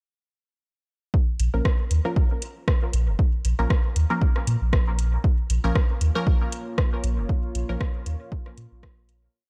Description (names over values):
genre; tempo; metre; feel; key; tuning
dub techno; 117 BPM; 4/4; swing 55% on 16ths; Bb minor; A4 = 440 Hz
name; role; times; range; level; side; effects
electronic kick drum; drums; 1.1-8.9 s; none; -24 LUFS; equal; none
warm sub bass; bass; 1.4-9.3 s; F1 to Bb2; -25 LUFS; equal; sidechain pumping
soft vintage rhythm box; drums; 1.4-9.2 s; hi-hat, rim click; -34 LUFS; equal; overdrive
filtered dub chord stab; stabs; 1.5-7.8 s; F3 to Bb4; -33 LUFS; equal; chorus, phaser, sidechain pumping, dub echo
deep dark ambient pad; sustained chords; 5.6-9.3 s; Bb3 to Db5; -40 LUFS; equal; chorus, built-in reverb, sidechain pumping
room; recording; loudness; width
digital ambience; none; -24 LUFS; mono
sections
1.1-9.3 groove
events
fade-out 6.6-9.3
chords
1.1 Bbm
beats
| 1.14 1.65 2.17 2.68 | 3.19 3.70 4.22 4.73 | 5.24 5.75 6.27 6.78 | 7.29 7.81 8.32 8.83